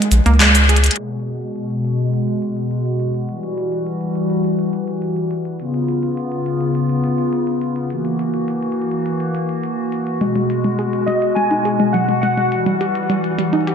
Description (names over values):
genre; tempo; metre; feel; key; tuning
IDM; 104 BPM; 4/4; straight; G# minor; A4 = 440 Hz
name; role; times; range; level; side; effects
warbly dusty pluck; arpeggios; 0.0-0.8, 10.2-13.7 s; F#3 to G#4; -20 LUFS; right 1 dB; chorus, vintage 12-bit sampler grit, ping-pong delay
glitchy drum kit; drums; 0.0-13.7 s; cabasa, handclaps, hi-hat; -17 LUFS; left 1 dB; gated reverb, ping-pong delay
round analog bass; bass; 0.1-0.9 s; A#1 to C#2; -12 LUFS; equal; none
hollow soft pad; sustained chords; 1.0-13.7 s; B2 to F#4; -19 LUFS; left 1 dB; chorus
warbly lo-fi synth keys; melody; 11.1-13.7 s; D#5 to G#5; -21 LUFS; right 1 dB; chorus, ping-pong delay
room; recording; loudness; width
moderate plate reverb, RT60 3.0 s; bright 1980s-style digital production, low-pass filter; -16 LUFS; side -7 dB against mid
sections
1.0-13.7 A section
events
band accent 0.4; drum fill 0.7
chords
0.0 F# (rootless); 1.0 G#m7; 3.3 Emadd9; 5.6 C#7; 7.9 F#7; 10.2 G#m7; 12.5 Emadd9